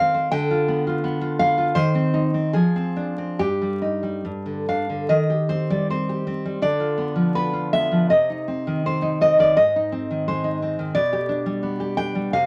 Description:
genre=romantic piece for solo classical guitar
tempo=68-89 BPM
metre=2/4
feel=rubato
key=C minor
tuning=A4 = 440 Hz
part: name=nylon-string guitar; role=solo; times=0.0-12.5 s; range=G2 to G5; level=-22 LUFS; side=equal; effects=none
room=moderate studio ambience, RT60 0.5 s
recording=vinyl crackle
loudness=-22 LUFS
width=mono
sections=0.0-5.1 A section; 5.1-12.5 B section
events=none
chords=0.3 G7/D; 1.8 Cm/Eb; 2.6 Dm7b5/F; 3.4 Eb/G; 4.3 G5; 5.1 Cm/Eb; 6.6 Bdim/D; 8.1 Cm; 9.6 Ab; 10.9 G/B

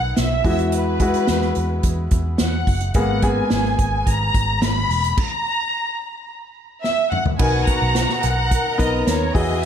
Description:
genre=piano-driven pop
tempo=108 BPM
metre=4/4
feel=straight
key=B major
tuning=A4 = 440 Hz
part: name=warm studio violin section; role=melody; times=0.0-9.7 s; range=B4 to B5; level=-23 LUFS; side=equal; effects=ping-pong delay
part: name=clear grand piano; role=accompaniment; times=0.0-9.7 s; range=G#2 to A#4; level=-23 LUFS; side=left 2 dB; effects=none
part: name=vintage muted picked electric bass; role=bass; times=0.0-9.7 s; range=E1 to E2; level=-22 LUFS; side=equal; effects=none
part: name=unplugged drum kit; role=drums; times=0.2-9.7 s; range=crash cymbal, hi-hat, kick drum, snare drum, toms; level=-21 LUFS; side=equal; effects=none
part: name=warm studio violin section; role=second line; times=7.4-9.7 s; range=F#4 to A#5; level=-26 LUFS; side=equal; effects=none
room=moderate plate reverb, RT60 1.0 s, small room ambience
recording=dreamy mix soaked in reverb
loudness=-17 LUFS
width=side -8 dB against mid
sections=0.0-7.4 A section; 7.4-9.7 B section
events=stop 5.2-7.4; drum fill 6.8-7.4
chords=0.5 Eadd9; 3.0 G#madd9; 5.2 N.C.; 7.4 Bmaj7

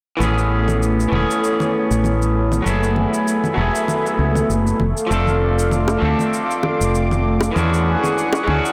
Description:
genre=sunset chillout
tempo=98 BPM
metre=4/4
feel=swing 55% on 16ths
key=A major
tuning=A4 = 442 Hz
part: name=electric guitar through a small old amp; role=accompaniment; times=0.2-8.7 s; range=E3 to A4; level=-23 LUFS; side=equal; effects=tape echo
part: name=lush unison pad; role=sustained chords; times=0.2-8.7 s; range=A3 to D6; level=-24 LUFS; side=equal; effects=chorus
part: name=mellow fretless electric bass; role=bass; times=0.2-8.6 s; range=E1 to E2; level=-21 LUFS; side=equal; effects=none
part: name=congas and shaker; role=drums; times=0.2-8.7 s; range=none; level=-30 LUFS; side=equal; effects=none
part: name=bongos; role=percussion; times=5.9-8.4 s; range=none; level=-25 LUFS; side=equal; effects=none
room=light reverb, digital ambience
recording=blown-out, overdriven recording, overdrive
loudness=-18 LUFS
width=mono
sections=0.2-8.7 A section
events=filter sweep on analog synth pad 0.2-8.7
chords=0.2 Amaj9; 2.7 F#m11; 4.8 F6; 7.6 E13

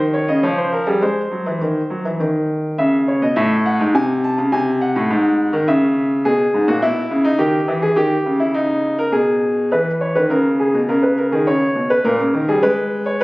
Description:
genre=classical, baroque-style two-part invention for grand piano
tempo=104 BPM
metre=3/4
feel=straight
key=unclear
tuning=A4 = 437 Hz
part: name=clear baby grand piano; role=solo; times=0.0-13.2 s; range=G#2 to A5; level=-15 LUFS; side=equal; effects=none
room=moderate recital hall reverb, RT60 1.4 s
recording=recorded on a phone in the room, club reverb, nothing above 10.5 kHz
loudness=-15 LUFS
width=side -21 dB against mid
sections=0.0-2.8 A section; 2.8-9.7 B section; 9.7-13.2 A section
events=none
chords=0.0 D#7; 1.0 G# (rootless); 2.8 C#m; 3.9 G#/B#; 4.5 G#7; 5.7 C#m; 6.2 G#m; 7.4 D#; 8.0 D#7; 9.1 G#m/B; 9.7 Emaj7; 10.9 Bmaj13/C#; 11.5 D#7(no3) (rootless); 12.6 G#m

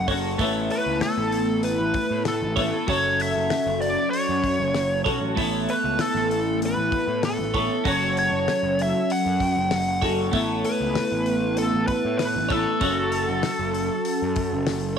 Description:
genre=psychedelic rock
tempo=97 BPM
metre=4/4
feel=straight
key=A major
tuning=A4 = 440 Hz
part: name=biting lead guitar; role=melody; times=0.0-15.0 s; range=A4 to F#5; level=-25 LUFS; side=equal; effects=wah, overdrive, tape echo
part: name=twelve-string electric guitar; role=riff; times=0.0-15.0 s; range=F#3 to C#5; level=-24 LUFS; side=equal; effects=phaser, double-tracked left and right
part: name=fuzz picked electric bass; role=bass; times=0.0-15.0 s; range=F#1 to A2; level=-30 LUFS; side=right 1 dB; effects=overdrive
part: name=damped 70s drum kit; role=drums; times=0.1-14.8 s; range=hi-hat, kick drum, snare drum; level=-31 LUFS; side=left 3 dB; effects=none
room=light reverb, small room reverb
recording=1960s-style stereo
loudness=-21 LUFS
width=side -7 dB against mid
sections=0.0-15.0 A section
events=none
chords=0.4 Aadd9; 2.9 F#m; 5.4 Aadd9; 7.8 F#m; 10.3 Aadd9; 12.8 F#m

